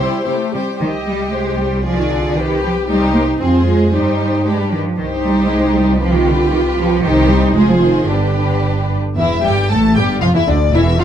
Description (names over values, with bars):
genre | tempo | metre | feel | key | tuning
quick classical-period movement for string orchestra | 115 BPM | 2/4 | straight | C minor | A4 = 444 Hz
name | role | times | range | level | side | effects
warm symphonic violin section | melody | 0.0-11.0 s | B4 to A5 | -22 LUFS | left 4 dB | none
clear studio violin section | second line | 0.0-11.0 s | D4 to C5 | -23 LUFS | left 2 dB | none
rich symphonic viola section | accompaniment | 0.0-11.0 s | D3 to G4 | -18 LUFS | equal | none
rich symphonic cello section | bass | 0.0-11.0 s | D2 to C4 | -18 LUFS | right 1 dB | none
rich chamber double bass section | bass | 0.8-11.0 s | E1 to G2 | -19 LUFS | right 2 dB | none
room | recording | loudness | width
moderate large studio reverb, RT60 0.8 s | dark, warm production | -13 LUFS | side -9 dB against mid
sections
0.8-9.2 A section; 9.2-11.0 A section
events
none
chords
0.0 C; 0.8 Cm; 1.9 G7/C; 2.9 Cm; 3.4 Fm; 3.9 Cm/G; 4.5 G; 5.0 Cm; 6.0 G7/C; 7.0 Cm; 7.6 Fm; 8.1 G; 9.2 Emadd11; 10.2 Dmadd9/E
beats
0.26 | 0.81 1.33 | 1.85 2.37 | 2.88 3.40 | 3.92 4.45 | 4.98 5.50 | 6.01 6.53 | 7.04 7.56 | 8.10 8.64 | 9.18 9.70 | 10.22 10.73